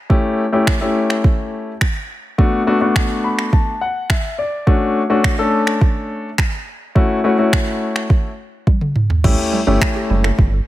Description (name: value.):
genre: dance-pop.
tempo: 105 BPM.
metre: 4/4.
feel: straight.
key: unclear.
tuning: A4 = 440 Hz.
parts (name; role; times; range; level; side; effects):
warm grand piano; accompaniment; 0.1-10.5 s; A3 to B5; -17 LUFS; left 2 dB; sidechain pumping.
smooth R&B drum kit; drums; 0.1-10.5 s; crash cymbal, finger snaps, kick drum, toms; -16 LUFS; right 1 dB; overdrive.
mallet-like synth pluck; arpeggios; 9.2-10.3 s; G3 to A4; -25 LUFS; right 6 dB; chorus, sidechain pumping, ping-pong delay.
saturated sub bass; bass; 9.2-10.6 s; F#1 to A1; -17 LUFS; right 1 dB; sidechain pumping.
room: digital ambience.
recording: none.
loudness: -14 LUFS.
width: side -15 dB against mid.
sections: 0.0-9.2 A section; 9.2-10.7 B section.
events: grand piano fill 3.0-4.7; drum fill 8.7-9.2.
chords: 0.1 A7; 2.4 Bm7; 4.7 Dmaj7; 7.0 A6; 9.2 A7.